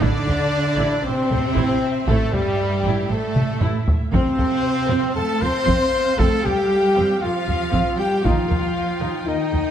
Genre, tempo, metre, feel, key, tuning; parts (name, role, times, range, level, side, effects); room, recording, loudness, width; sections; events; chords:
cinematic, epic orchestral film score; 117 BPM; 4/4; straight; A4 = 440 Hz
rich symphonic violin section; melody; 0.0-9.7 s; G4 to C6; -34 LUFS; left 3 dB
warm symphonic violin section; second line; 0.0-9.7 s; G4 to C6; -30 LUFS; left 3 dB
warm symphonic viola section; accompaniment; 0.0-9.7 s; C4 to G5; -30 LUFS; right 2 dB
warm French horn section; sustained chords; 0.0-9.7 s; G3 to C5; -22 LUFS; left 2 dB
clear trumpet; stabs; 0.0-9.7 s; G3 to C5; -28 LUFS; right 1 dB
warm symphonic cello section; bass; 0.0-9.7 s; G2 to C4; -26 LUFS; right 4 dB
warm symphonic double bass section; bass; 0.0-9.6 s; A1 to F2; -26 LUFS; right 4 dB
taiko ensemble; drums; 0.0-9.7 s; -23 LUFS; equal
moderate scoring stage reverb, RT60 1.5 s; -18 LUFS; side -9 dB against mid
0.0-9.7 A section
drum fill 3.4-4.1
0.0 Am; 4.1 F; 8.2 Eb